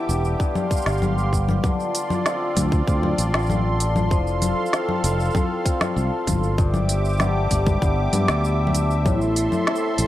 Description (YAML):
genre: folktronica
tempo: 97 BPM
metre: 4/4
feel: straight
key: D dorian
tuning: A4 = 440 Hz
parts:
  - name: warm analog pad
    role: sustained chords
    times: 0.0-10.1 s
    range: F4 to D6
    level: -27 LUFS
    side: right 2 dB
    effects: chorus
  - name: cimbalom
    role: arpeggios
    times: 0.0-10.1 s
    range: G2 to A4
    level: -26 LUFS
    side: left 3 dB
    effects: ping-pong delay
  - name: flickering grainy texture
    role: texture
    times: 0.0-1.6 s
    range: D6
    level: -43 LUFS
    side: right 4 dB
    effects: none
  - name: modern bright fingered electric bass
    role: bass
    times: 0.1-10.1 s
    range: E1 to G2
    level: -22 LUFS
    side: equal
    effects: none
  - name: organic electronic drum kit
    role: drums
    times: 0.1-10.1 s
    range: congas, hi-hat, shaker, snare drum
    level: -25 LUFS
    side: left 2 dB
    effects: none
  - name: electronic kick drum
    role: drums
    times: 0.4-9.2 s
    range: none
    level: -22 LUFS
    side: equal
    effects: none
room: light reverb, digital ambience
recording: none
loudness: -19 LUFS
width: side -14 dB against mid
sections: 0.0-1.6 A section; 1.6-10.1 B section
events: none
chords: 0.4 G7sus4; 1.6 Dm7; 4.1 F; 6.6 Em7/G; 9.1 Am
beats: 0.40 1.02 | 1.64 2.25 2.87 3.49 | 4.11 4.73 5.35 5.96 | 6.58 7.20 7.82 8.44 | 9.06 9.68